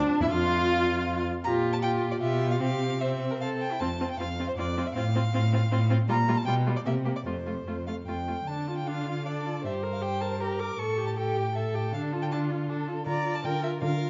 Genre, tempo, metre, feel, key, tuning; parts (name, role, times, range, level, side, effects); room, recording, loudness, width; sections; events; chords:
quick classical-period movement for string quartet; 157 BPM; 3/4; rubato; F major, D minor from 8.5 s; A4 = 441 Hz
rich violin; second line; 0.0-14.1 s; D4 to D5; -36 LUFS; equal
clear viola; accompaniment; 0.0-14.1 s; G3 to Bb4; -34 LUFS; equal
rich violin; melody; 0.2-14.1 s; C5 to D6; -36 LUFS; equal
rich cello; bass; 0.2-14.1 s; E2 to D3; -32 LUFS; equal
wet recital hall reverb, RT60 1.8 s; nothing above 7.7 kHz; -28 LUFS; mono
0.0-8.5 A section; 8.5-14.1 B section
0.3 N.C.; 1.4 Gm7/Bb; 2.2 G7/B; 2.6 C; 3.8 F5; 5.0 F/A; 6.1 Gm7/Bb; 6.5 G7/B; 6.9 C7(no3); 7.3 F; 8.5 Dm; 9.6 Gmadd11; 10.8 A7; 11.9 Dm